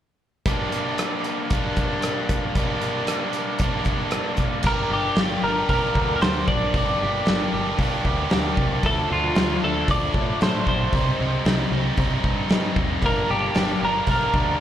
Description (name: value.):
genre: indie rock.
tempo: 114 BPM.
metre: 4/4.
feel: straight.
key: G minor.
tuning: A4 = 442 Hz.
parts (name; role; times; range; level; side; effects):
biting overdriven guitar; riff; 0.5-14.6 s; F3 to G4; -25 LUFS; right 1 dB; slapback echo.
big rock drum kit; drums; 0.5-14.5 s; crash cymbal, hi-hat, kick drum, rim click, snare drum; -24 LUFS; equal; none.
growling picked electric bass; bass; 4.6-14.5 s; G1 to A2; -27 LUFS; equal; overdrive.
twelve-string electric guitar; melody; 4.7-14.6 s; F4 to D5; -24 LUFS; equal; none.
room: light reverb, small room ambience.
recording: live gig heard through the venue's PA, club reverb.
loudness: -20 LUFS.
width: side -10 dB against mid.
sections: 0.5-4.7 A section; 4.7-14.6 B section.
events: none.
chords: 0.5 Gm; 8.8 Dm; 10.9 Cm; 13.0 Gm.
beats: | 0.47 0.99 1.52 2.04 | 2.57 3.09 3.62 4.14 | 4.66 5.19 5.71 6.23 | 6.76 7.28 7.80 8.33 | 8.85 9.37 9.90 10.42 | 10.94 11.47 11.99 12.52 | 13.04 13.56 14.09.